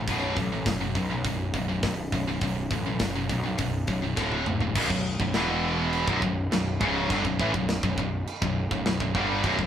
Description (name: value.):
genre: heavy metal.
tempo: 102 BPM.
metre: 4/4.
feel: straight.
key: B minor.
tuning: A4 = 439 Hz.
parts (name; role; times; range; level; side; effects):
heavy high-gain guitar; riff; 0.0-9.7 s; B1 to G3; -31 LUFS; right 6 dB; distortion.
high-gain distorted guitar; riff; 0.0-9.7 s; B1 to G3; -30 LUFS; left 6 dB; distortion.
fuzz picked electric bass; bass; 0.0-9.7 s; B0 to B1; -31 LUFS; equal; overdrive.
tight metal drum kit; drums; 0.1-9.7 s; china cymbal, crash cymbal, hi-hat, kick drum, snare drum, toms; -31 LUFS; equal; none.
distorted electric guitar; riff; 4.8-9.7 s; B1 to G3; -31 LUFS; right 1 dB; overdrive.
room: moderate studio reverb, RT60 0.9 s.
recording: band playing live in one room.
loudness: -24 LUFS.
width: side -9 dB against mid.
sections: 0.0-4.8 A section; 4.8-9.7 B section.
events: drum fill 4.2-4.8.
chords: 0.1 B5; 4.2 D5; 4.8 B5; 5.3 E5; 6.1 Bm.